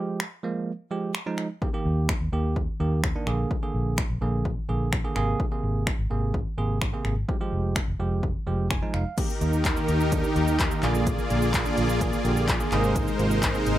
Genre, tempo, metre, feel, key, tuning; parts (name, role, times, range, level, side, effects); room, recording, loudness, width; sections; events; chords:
dance-pop; 127 BPM; 4/4; straight; Eb major; A4 = 440 Hz
bell-like tine electric piano; accompaniment; 0.0-13.8 s; C3 to Ab5; -29 LUFS; right 4 dB; sidechain pumping
deep house drum kit; drums; 0.2-13.8 s; crash cymbal, finger snaps, handclaps, hi-hat, kick drum, shaker; -28 LUFS; left 1 dB
vintage muted fingered electric bass; bass; 1.9-13.8 s; F1 to Eb2; -27 LUFS; equal; sidechain pumping
supersaw chords; sustained chords; 9.2-13.8 s; Eb3 to D5; -26 LUFS; equal; sidechain pumping
little or no reverb; rough home demo mix; -23 LUFS; side -13 dB against mid
0.0-9.2 A section; 9.2-13.8 B section
tine electric piano fill 8.5-9.2
0.0 Fmadd9; 1.6 Eb; 3.3 Bb7; 5.2 Abadd9; 7.3 Fmadd9; 9.2 Eb; 10.8 Bb7; 12.7 Abadd9